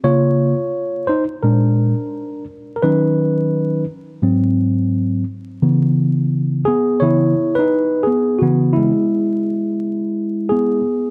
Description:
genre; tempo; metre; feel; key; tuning
hip hop; 86 BPM; 4/4; swing 61% on 16ths; C# minor; A4 = 439 Hz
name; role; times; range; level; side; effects
tine electric piano; solo; 0.0-11.1 s; G#2 to C#5; -18 LUFS; equal; overdrive
room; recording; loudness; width
moderate plate reverb, RT60 2.8 s; dark, warm production, vinyl crackle; -17 LUFS; mono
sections
0.0-11.1 A section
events
tine electric piano solo 0.0-11.1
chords
0.0 C#6; 1.4 A#7; 2.8 Badd9/D#; 4.2 G#7; 5.6 C#m7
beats
| 0.04 0.74 1.43 2.13 | 2.83 3.53 4.22 4.92 | 5.62 6.32 7.01 7.71 | 8.41 9.11 9.81 10.50

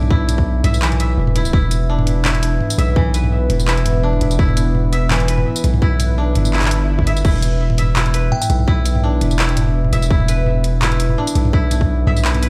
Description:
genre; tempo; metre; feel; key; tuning
half-time drum and bass; 168 BPM; 4/4; swing 54% on 16ths, half-time; unclear; A4 = 440 Hz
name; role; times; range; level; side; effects
deep dark ambient pad; sustained chords; 0.0-12.5 s; B3 to B4; -28 LUFS; equal; chorus, built-in reverb, sidechain pumping
koto; arpeggios; 0.0-12.5 s; E3 to E5; -26 LUFS; equal; vintage 12-bit sampler grit, tape echo
long sustained 808-style bass; bass; 0.0-12.5 s; E1 to B1; -19 LUFS; equal; none
drum and bass drum kit; drums; 0.0-12.5 s; crash cymbal, handclaps, hi-hat, tambourine, toms; -24 LUFS; equal; overdrive, studio reverb
electronic kick drum; drums; 0.1-11.9 s; none; -18 LUFS; equal; overdrive, studio reverb
swell; sound effects; 6.7-7.2 s; none; -32 LUFS; equal; none
glassy synth bell; melody; 8.3-8.5 s; G5; -30 LUFS; equal; chorus, vintage 12-bit sampler grit, tape echo
room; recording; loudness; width
light reverb; played on a big sound system in a bare room, stone room reverb; -16 LUFS; mono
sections
0.0-12.5 A section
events
swell 6.7-7.2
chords
0.0 E5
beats
| 0.10 0.46 0.82 1.18 | 1.53 1.89 2.25 2.60 | 2.96 3.32 3.68 4.03 | 4.39 4.75 5.11 5.46 | 5.82 6.18 6.53 6.89 | 7.25 7.61 7.96 8.32 | 8.68 9.03 9.39 9.75 | 10.11 10.46 10.82 11.18 | 11.53 11.89 12.25

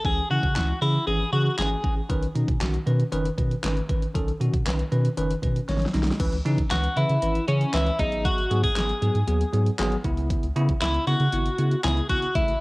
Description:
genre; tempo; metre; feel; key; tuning
dance-pop; 117 BPM; 4/4; straight; unclear; A4 = 440 Hz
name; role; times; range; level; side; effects
twelve-string electric guitar; melody; 0.0-1.9, 6.7-12.6 s; C#4 to G#4; -26 LUFS; left 1 dB; cassette tape
bell-like tine electric piano; accompaniment; 0.0-12.5 s; C#3 to C#5; -28 LUFS; equal; fast stereo tremolo, sidechain pumping
warm sub bass; bass; 0.0-12.6 s; F#1 to C#3; -25 LUFS; equal; sidechain pumping
pop drum kit; drums; 0.0-12.6 s; crash cymbal, handclaps, hi-hat, kick drum, snare drum; -28 LUFS; equal; overdrive, cassette tape
room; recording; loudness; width
light reverb; home recording on cassette; -21 LUFS; side -22 dB against mid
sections
0.0-6.2 A section; 6.2-12.6 B section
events
drum fill 5.7-6.2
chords
0.0 C#m; 2.1 Badd9; 6.2 C#m7; 8.0 G#m7; 10.0 C#m7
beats
| 0.05 0.56 1.07 1.58 | 2.10 2.61 3.12 3.63 | 4.15 4.66 5.17 5.69 | 6.20 6.71 7.22 7.74 | 8.25 8.76 9.28 9.79 | 10.30 10.81 11.33 11.84 | 12.35

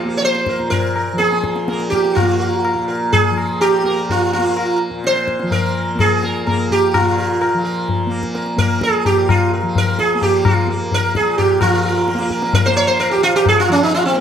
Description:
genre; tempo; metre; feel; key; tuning
indian classical, Hindustani; 127 BPM; 5/4; straight; Bb raga kafi; A4 = 440 Hz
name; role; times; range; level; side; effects
tanpura; drone; 0.0-14.2 s; Bb2 to Bb3; -23 LUFS; equal; none
sitar; melody; 0.2-14.2 s; C4 to Db5; -16 LUFS; right 2 dB; none
tabla; percussion; 0.2-14.2 s; none; -20 LUFS; left 5 dB; none
room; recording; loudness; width
moderate scoring stage reverb, RT60 1.6 s; close, detailed microphones; -14 LUFS; side -8 dB against mid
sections
0.0-11.6 A section; 11.6-14.2 B section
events
speeding up 0.0-14.2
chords
none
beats
0.23 0.72 1.20 1.69 | 2.17 2.65 3.13 3.61 4.09 | 4.57 5.04 5.52 6.00 6.47 | 6.94 7.41 7.88 8.36 8.82 | 9.29 9.76 10.23 10.69 11.16 | 11.62 12.08 12.54 13.00 13.46 | 13.92

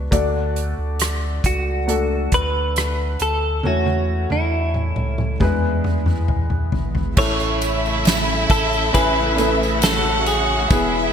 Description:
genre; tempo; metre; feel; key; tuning
pop ballad; 68 BPM; 4/4; straight; A major; A4 = 440 Hz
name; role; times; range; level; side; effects
warm concert grand piano; accompaniment; 0.0-11.1 s; A2 to D5; -24 LUFS; left 2 dB; lush chorus
saturated sub bass; bass; 0.0-11.1 s; E1 to E2; -23 LUFS; equal; none
unplugged drum kit; drums; 0.1-10.9 s; crash cymbal, hi-hat, kick drum, ride cymbal, rim click, snare drum, toms; -22 LUFS; equal; gated reverb
direct-recorded clean electric guitar; melody; 1.5-11.1 s; E4 to C#5; -23 LUFS; equal; analog chorus
warm studio violin section; second line; 7.2-11.1 s; E4 to F#5; -23 LUFS; right 2 dB; none
warm studio string section; sustained chords; 7.2-11.1 s; B2 to E4; -25 LUFS; left 2 dB; none
tambourine; percussion; 7.2-10.9 s; none; -34 LUFS; right 8 dB; none
room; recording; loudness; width
moderate lush hall reverb, RT60 2.1 s; bright 1980s-style digital production; -17 LUFS; side -8 dB against mid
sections
0.0-7.2 A section; 7.2-11.1 B section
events
drum fill 3.6-7.2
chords
0.1 D; 3.6 A/E; 5.4 E; 7.2 A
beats
| 0.12 1.00 1.88 2.76 | 3.65 4.53 5.41 6.29 | 7.17 8.06 8.94 9.82 | 10.71

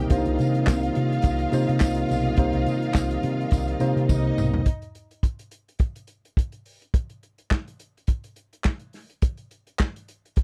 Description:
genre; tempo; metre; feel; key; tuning
disco; 105 BPM; 4/4; swing 56% on 16ths; C minor; A4 = 444 Hz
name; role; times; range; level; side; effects
rich symphonic string section; second line; 0.0-4.7 s; Eb4 to F5; -33 LUFS; equal; none
tine electric piano; accompaniment; 0.0-4.7 s; C3 to C5; -28 LUFS; equal; none
overdriven tonewheel organ; sustained chords; 0.0-4.6 s; C3 to Eb4; -34 LUFS; equal; chorus vibrato, slow rotary speaker
hollow-body short-scale fingered electric bass; bass; 0.0-4.6 s; B1 to C3; -28 LUFS; equal; none
warm soul drum kit; drums; 0.1-10.4 s; handclaps, hi-hat, kick drum, snare drum, toms; -24 LUFS; equal; none
tambourine; percussion; 0.1-4.5 s; none; -48 LUFS; equal; none
room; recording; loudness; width
little or no reverb; none; -25 LUFS; mono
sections
0.0-4.7 A section; 4.7-10.4 B section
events
drum fill 4.1-4.7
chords
0.0 Cm7; 4.7 N.C.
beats
| 0.10 0.67 1.24 1.81 | 2.38 2.95 3.52 4.09 | 4.66 5.23 5.80 6.37 | 6.94 7.51 8.08 8.65 | 9.23 9.80 10.37

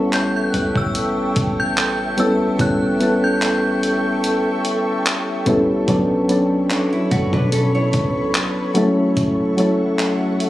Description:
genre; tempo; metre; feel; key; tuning
contemporary R&B; 73 BPM; 4/4; swing 54% on 16ths; unclear; A4 = 440 Hz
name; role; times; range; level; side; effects
soft electric-piano-like synth keys; accompaniment; 0.0-10.5 s; F#3 to A4; -18 LUFS; equal; chorus
ethereal airy pad; sustained chords; 0.0-10.5 s; A4 to C#6; -26 LUFS; right 1 dB; ensemble chorus, built-in reverb
clean 808-style bass; bass; 0.0-10.5 s; F#1 to B2; -26 LUFS; equal; none
synth chime; melody; 0.1-5.4 s; E6 to G6; -25 LUFS; left 1 dB; ensemble chorus, digital delay
dusty soul sampler-style drum kit; drums; 0.1-10.5 s; handclaps, hi-hat, kick drum; -23 LUFS; equal; none
nylon-string guitar; arpeggios; 6.7-8.7 s; F#3 to C#5; -24 LUFS; right 1 dB; digital delay
room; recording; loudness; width
light reverb; recorded on a phone in the room, club reverb; -16 LUFS; side -15 dB against mid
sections
0.0-10.5 A section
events
none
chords
0.0 A7; 5.9 Bm9; 8.8 F#m7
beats
0.13 0.95 1.77 | 2.59 3.41 4.24 5.06 | 5.88 6.70 7.52 8.35 | 9.17 9.99

